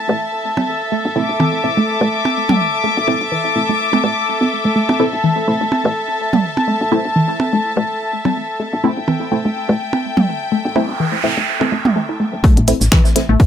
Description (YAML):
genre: minimal techno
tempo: 125 BPM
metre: 4/4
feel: swing 56% on 16ths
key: A minor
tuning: A4 = 440 Hz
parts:
  - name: dark studio string section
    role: texture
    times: 0.0-12.5 s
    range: A4 to D6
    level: -19 LUFS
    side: left 2 dB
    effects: sidechain pumping
  - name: resonant blip pluck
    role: riff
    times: 0.1-13.4 s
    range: E3 to E4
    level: -20 LUFS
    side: equal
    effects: phaser, sidechain pumping, tape echo
  - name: woody FM bass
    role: bass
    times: 0.1-13.4 s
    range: E1 to A2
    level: -20 LUFS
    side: equal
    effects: tube saturation, sidechain pumping, high-pass filter
  - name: electronic percussion blips and toms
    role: percussion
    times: 0.6-11.9 s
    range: none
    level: -20 LUFS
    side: right 3 dB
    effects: tape echo
  - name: filtered dub chord stab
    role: stabs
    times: 1.2-13.2 s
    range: A3 to E4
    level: -20 LUFS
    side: equal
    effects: phaser, tape echo
  - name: noise sweep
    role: sound effects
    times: 10.7-12.4 s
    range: none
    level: -22 LUFS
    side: right 7 dB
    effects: none
  - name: electronic kick drum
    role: drums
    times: 12.4-13.5 s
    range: none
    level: -11 LUFS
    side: equal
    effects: none
  - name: vintage brush drum kit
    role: drums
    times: 12.4-13.5 s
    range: hi-hat, snare drum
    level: -30 LUFS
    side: left 3 dB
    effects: sidechain pumping on hats, high-pass filter on hats, high-pass filter on snare, high-pass filter on room
  - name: minimal click drum kit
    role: drums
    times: 12.6-13.3 s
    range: finger snaps, hi-hat, shaker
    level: -19 LUFS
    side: equal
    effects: low-pass filter on snare, low-pass filter on perc, low-pass filter on hats, low-pass filter on room
room: moderate studio ambience, RT60 0.5 s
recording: none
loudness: -14 LUFS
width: side -9 dB against mid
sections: 0.0-12.4 A section; 12.4-13.5 B section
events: noise sweep 10.7-12.4; drop 12.4-13.5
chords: 0.0 Am